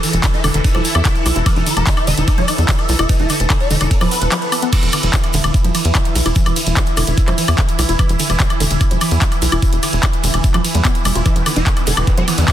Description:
psychedelic trance; 147 BPM; 4/4; straight; A4 = 442 Hz
swarming rave lead; melody; 0.0-4.6, 11.3-12.5 s; E3 to E5; -23 LUFS; equal; chorus, phaser, vintage 12-bit sampler grit, sidechain pumping, ping-pong delay
bubbling stepped-filter texture; sustained chords; 0.0-12.5 s; E3 to A4; -23 LUFS; right 1 dB; chorus, built-in reverb, sidechain pumping
woody wave-folded pluck; riff; 0.0-12.5 s; D3 to F4; -22 LUFS; right 1 dB; chorus, auto-pan, sidechain pumping, ping-pong delay
garage drum kit; drums; 0.0-12.5 s; crash cymbal, handclaps, hi-hat, ride cymbal, woodblock; -20 LUFS; equal
egg shaker; percussion; 0.0-12.5 s; -29 LUFS; left 4 dB
tight sequencer bass; bass; 0.1-12.4 s; D1 to E2; -17 LUFS; equal
electronic kick drum; drums; 0.2-12.5 s; -16 LUFS; equal
formant-sweep wobble bass; second line; 12.1-12.5 s; B3 to D4; -29 LUFS; right 2 dB; lush chorus, sidechain pumping, high-pass filter, ping-pong delay
digital ambience; dense, heavily limited modern master; -13 LUFS; side -11 dB against mid
0.0-4.7 A section; 4.7-12.5 A section
drop 0.0-4.7, 4.7-12.5
0.0 E5

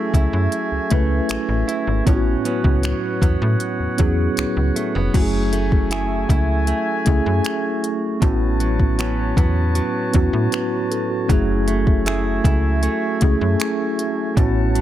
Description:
contemporary R&B; 78 BPM; 4/4; straight; F# minor; A4 = 440 Hz
mellow tine electric piano; accompaniment; 0.0-14.8 s; A3 to B4; -23 LUFS; equal; medium stereo tremolo
warm woodwind section; sustained chords; 0.0-14.8 s; A3 to A5; -27 LUFS; equal; sidechain pumping
direct-recorded clean electric guitar; arpeggios; 0.0-14.8 s; A2 to G#4; -26 LUFS; right 5 dB; digital delay
slap-like FM bass; bass; 0.1-14.8 s; E#1 to A2; -20 LUFS; equal
smooth R&B drum kit; drums; 0.1-14.8 s; crash cymbal, finger snaps, hi-hat, kick drum; -19 LUFS; equal
little or no reverb; -17 LUFS; side -12 dB against mid
0.0-5.1 A section; 5.1-14.8 B section
0.0 F#m9; 2.1 A69; 5.1 F#m9; 8.2 A69; 11.3 F#m9

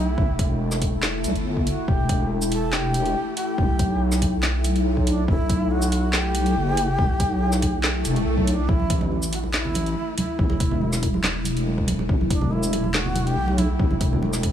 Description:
deep dubstep; 141 BPM; 4/4; half-time; A4 = 440 Hz
breathy bright long shakuhachi; melody; 0.0-14.2 s; D4 to A4; -29 LUFS; equal; dub echo
deep dark ambient pad; sustained chords; 0.0-14.5 s; A3 to E4; -29 LUFS; equal; chorus, built-in reverb
deep soft wobble bass; bass; 0.0-14.5 s; E1 to C2; -23 LUFS; equal; chorus
electronic kick drum; drums; 0.2-14.5 s; -23 LUFS; equal
garage drum kit; drums; 0.4-14.5 s; handclaps, hi-hat, shaker, snare drum; -28 LUFS; equal; overdrive
swell; sound effects; 8.0-8.7 s; -32 LUFS; right 3 dB
congas; percussion; 8.7-14.3 s; -29 LUFS; right 2 dB
little or no reverb; small room ambience; -20 LUFS; side -10 dB against mid
0.0-14.5 A section
swell 8.0-8.7
0.0 A5; 1.9 Em; 8.7 A5

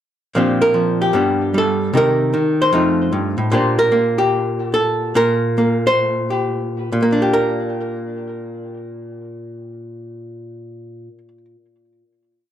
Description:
solo jazz; 128-151 BPM; 4/4; swing 65% on 8ths; Bb major; A4 = 439 Hz
archtop guitar, miked and amplified; solo; 0.3-11.4 s; F2 to C5; -16 LUFS; equal; tape echo
wet studio reverb, RT60 0.6 s; -15 LUFS; side -10 dB against mid
0.3-6.9 A section; 6.9-10.7 final chord
slowing down 3.5-6.9
0.3 Bb69; 1.1 G; 1.9 Cm7; 2.7 F7; 3.5 Bb69; 6.9 Bb6

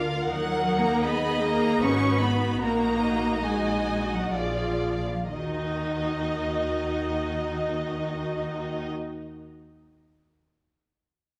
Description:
classical, slow romantic movement for string orchestra; 60-83 BPM; 3/4; rubato; Eb minor; A4 = 440 Hz
rich chamber violin section; melody; 0.0-8.9 s; Bb4 to Gb5; -34 LUFS; equal
rich chamber viola section; accompaniment; 0.0-8.9 s; Eb4 to Bb4; -32 LUFS; equal
rich chamber double bass section; bass; 0.0-8.9 s; Ab1 to Eb2; -36 LUFS; equal
warm symphonic violin section; second line; 0.3-8.9 s; Eb5 to Db6; -36 LUFS; equal
warm chamber cello section; bass; 0.3-8.9 s; Eb3 to Db4; -32 LUFS; equal
moderate scoring stage reverb, RT60 1.9 s; -26 LUFS; mono
0.0-5.3 A section; 5.3-8.1 B section
slowing down 0.0-5.3
0.3 Ebm; 1.8 Abm7; 2.6 Ebm/Bb; 4.3 Bb7; 5.3 Ebm

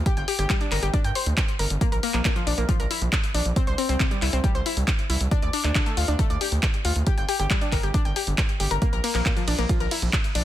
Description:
uplifting trance; 137 BPM; 4/4; straight; A4 = 441 Hz
gritty driven synth bass; bass; 0.0-10.4 s; G1 to G2; -25 LUFS; equal; tube saturation, sidechain pumping
analog pluck; arpeggios; 0.1-10.4 s; Bb2 to G5; -28 LUFS; left 3 dB; chorus, sidechain pumping, digital delay
electronic kick drum; drums; 0.1-10.2 s; -24 LUFS; equal
punchy analog drum machine; drums; 0.1-10.4 s; handclaps, hi-hat, ride cymbal; -28 LUFS; equal; sidechain pumping on hats, sidechain pumping on cymbals
little or no reverb; dense, heavily limited modern master; -21 LUFS; side -13 dB against mid
0.0-10.4 A section
0.1 G5; 1.8 Bb5; 3.6 C; 5.3 D5; 7.1 G5; 8.8 Bb5

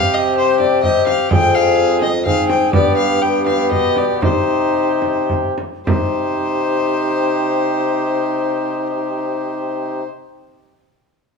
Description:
classical, renaissance-style consort dance; 104-127 BPM; 3/4; straight; C minor; A4 = 440 Hz
warm violin; melody; 0.0-10.0 s; C5 to G5; -21 LUFS; left 5 dB
mellow cor anglais; second line; 0.0-10.0 s; G4 to Ab4; -22 LUFS; right 6 dB
warm bassoon; accompaniment; 0.0-10.0 s; B3 to Eb4; -20 LUFS; left 4 dB
mellow bassoon; bass; 0.0-10.0 s; F2 to C3; -21 LUFS; left 1 dB
frame drum; percussion; 0.6-6.1 s; -21 LUFS; right 1 dB
moderate recital hall reverb, RT60 1.5 s; small room reverb; -14 LUFS; side -5 dB against mid
0.0-5.9 A section; 5.9-9.3 B section
slowing down 2.0-5.9
0.0 C5; 1.3 Fm; 2.7 G; 4.2 Cm

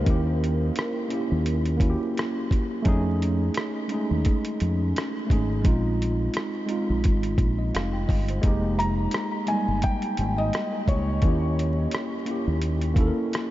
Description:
lo-fi hip hop; 86 BPM; 4/4; swing 56% on 16ths; F minor; A4 = 441 Hz
felt-muted upright piano; melody; 0.0-1.1, 8.8-12.2 s; Bb4 to Bb5; -32 LUFS; left 1 dB; ping-pong delay
mellow tine electric piano; accompaniment; 0.0-13.5 s; G3 to G5; -27 LUFS; right 1 dB; medium stereo tremolo, cassette tape
deep dub fingered electric bass; bass; 0.0-13.1 s; F1 to F2; -25 LUFS; equal
lo-fi sampler-style drum kit; drums; 0.1-13.5 s; hi-hat, kick drum, rim click; -27 LUFS; equal
moderate huge ambient reverb, RT60 8.7 s; dreamy mix soaked in reverb, vinyl crackle, nothing above 7.7 kHz; -22 LUFS; side -15 dB against mid
0.0-13.5 A section
0.1 Eb7b9; 2.9 F7alt; 5.6 Bb9sus4; 8.4 Fm11; 11.2 Eb7b9

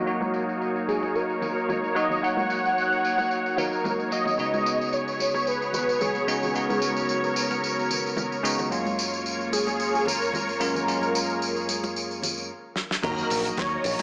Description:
nu-disco, nu disco; 111 BPM; 4/4; swing 54% on 16ths; Eb minor; A4 = 440 Hz
bell-like tine electric piano; accompaniment; 0.0-14.0 s; Gb2 to Gb4; -32 LUFS; equal; phaser, sidechain pumping, digital delay
muted studio string section; sustained chords; 0.0-14.0 s; Gb3 to Bb5; -31 LUFS; equal; sidechain pumping, low-pass filter
damped 70s drum kit; drums; 0.1-14.0 s; crash cymbal, hi-hat, snare drum, tambourine; -34 LUFS; equal; small room ambience
congas; percussion; 0.2-14.0 s; -39 LUFS; equal
unison lead; melody; 0.9-14.0 s; Ab4 to Gb5; -30 LUFS; equal; ensemble chorus, dub echo
fingered electric bass with an envelope filter; bass; 13.0-13.9 s; Bb1 to Eb2; -36 LUFS; equal
electronic kick drum; drums; 13.0-13.7 s; -40 LUFS; equal; small room ambience
sub drop; sound effects; 13.0-14.0 s; -48 LUFS; equal
moderate echo chamber reverb, RT60 1.9 s, small room ambience; low-pass filter, small speaker sound; -26 LUFS; mono
0.0-13.0 A section
filter sweep 0.0-13.0; drum fill 12.8; impact 13.0-14.0
0.0 Ebm; 4.4 Db7sus4; 8.7 Gbmaj7; 13.0 Ebm

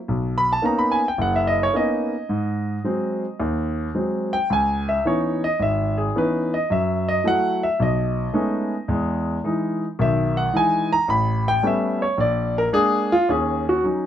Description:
jazz; 109 BPM; 4/4; swing 69% on 8ths; A4 = 440 Hz
warm grand piano; solo; 0.1-14.1 s; F#1 to B5; -19 LUFS; equal
moderate studio reverb, RT60 0.7 s; dark, warm production; -19 LUFS; side -10 dB against mid
0.0-13.3 A section
grand piano solo 0.0-13.3
0.1 Bmaj9; 2.3 G#7; 4.5 C#m9; 6.7 F#m7; 7.8 B13; 8.9 Emaj7; 11.1 A9; 12.2 A#7; 13.3 Ebm7

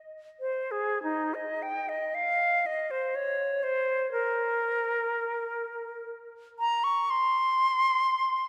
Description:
classical, free, expressive piece for unaccompanied flute; 46-62 BPM; 3/4; rubato; A4 = 440 Hz
silver concert flute; solo; 0.4-8.5 s; Eb4 to Db6; -29 LUFS; equal
wet church reverb, RT60 3.1 s; -28 LUFS; mono
0.0-8.5 A section

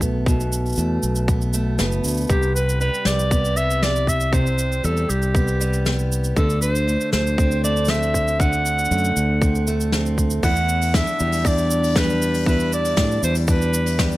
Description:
folktronica; 118 BPM; 4/4; straight; E minor; A4 = 438 Hz
picked steel-string acoustic guitar; arpeggios; 0.0-14.2 s; E2 to E4; -26 LUFS; equal; plate reverb, tape echo
overdriven fingered electric bass; bass; 0.0-14.2 s; F#1 to A2; -21 LUFS; equal
electronic kick drum; drums; 0.0-14.1 s; -21 LUFS; equal; overdrive
jazz brush drum kit; drums; 0.0-14.2 s; cabasa, hi-hat, snare drum; -26 LUFS; equal
bright clarinet; melody; 2.3-14.2 s; G4 to F#5; -23 LUFS; right 1 dB; plate reverb
light reverb; -17 LUFS; side -17 dB against mid
0.0-10.4 A section; 10.4-14.2 B section
0.0 B7(no3); 2.3 Cmaj7(no3); 6.4 D7; 10.4 Em7

